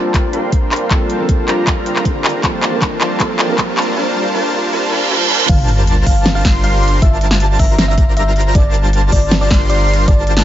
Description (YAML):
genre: future bass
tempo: 157 BPM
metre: 4/4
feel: half-time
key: G minor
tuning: A4 = 440 Hz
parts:
  - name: dark concert grand piano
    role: accompaniment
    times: 0.0-5.5 s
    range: F3 to Bb4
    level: -23 LUFS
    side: right 2 dB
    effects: sidechain pumping, tape echo
  - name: airy breathy pad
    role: sustained chords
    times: 0.0-3.9 s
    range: F4 to G5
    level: -27 LUFS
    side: left 2 dB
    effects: none
  - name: supersaw chords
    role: riff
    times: 0.0-10.4 s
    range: G3 to C6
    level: -19 LUFS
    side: equal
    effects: sidechain pumping, low-pass filter
  - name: long sustained 808-style bass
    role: bass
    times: 0.0-10.4 s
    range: G1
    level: -15 LUFS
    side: equal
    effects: tube saturation, sidechain pumping, high-pass filter
  - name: riser, reverse cymbal and sub drop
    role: sound effects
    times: 1.9-7.0 s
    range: none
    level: -22 LUFS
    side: right 2 dB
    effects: none
  - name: electronic kick drum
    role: drums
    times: 0.1-10.2 s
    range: none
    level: -14 LUFS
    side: equal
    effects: overdrive
  - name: pop drum kit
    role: drums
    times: 0.1-10.4 s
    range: crash cymbal, handclaps, hi-hat, snare drum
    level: -19 LUFS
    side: equal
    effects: none
  - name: thumb-piano-like synth pluck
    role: melody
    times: 5.5-10.3 s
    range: D5 to F5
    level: -22 LUFS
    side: left 1 dB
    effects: chorus, sidechain pumping, ping-pong delay
  - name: airy dreamy lead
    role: arpeggios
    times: 5.5-10.4 s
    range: A5 to C6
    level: -23 LUFS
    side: equal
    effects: chorus, sidechain pumping
room: light reverb, digital ambience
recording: high-pass filter, nothing above 7.7 kHz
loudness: -12 LUFS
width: side -12 dB against mid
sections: 0.0-5.5 A section; 5.5-10.4 B section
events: build-up 0.0-5.5; drum fill 0.0-4.0, 5.3; filter sweep on supersaw synth 0.0-5.5; filter sweep 0.0-5.5; riser 1.9-4.0; reverse cymbal 4.9-5.5; drop 5.5-10.4; impact 5.5-7.0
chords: 0.0 Gm11